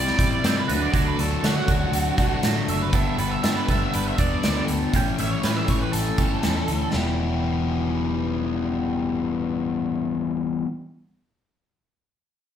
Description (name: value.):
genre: quiet-loud alternative rock.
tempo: 120 BPM.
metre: 4/4.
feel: straight.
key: E minor.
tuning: A4 = 440 Hz.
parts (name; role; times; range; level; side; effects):
octave-fuzz lead guitar; melody; 0.0-6.9 s; F#4 to E5; -28 LUFS; right 5 dB; distortion.
twangy electric guitar; arpeggios; 0.0-10.7 s; E2 to A4; -31 LUFS; right 9 dB; phaser.
sludgy distorted guitar; riff; 0.0-10.7 s; G2 to E4; -25 LUFS; left 6 dB; overdrive.
fingered electric bass; bass; 0.0-10.6 s; E1 to D3; -29 LUFS; right 1 dB; none.
big rock drum kit; drums; 0.1-7.0 s; hi-hat, kick drum, snare drum; -25 LUFS; right 1 dB; none.
room: wet large studio reverb, RT60 0.7 s.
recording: band playing live in one room.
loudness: -21 LUFS.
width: side -9 dB against mid.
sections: 0.0-6.9 A section; 6.9-10.9 B section.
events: lead electric guitar solo 0.0-6.9.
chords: 0.0 C; 0.7 D; 2.9 Gadd9; 4.9 A7; 6.9 Em.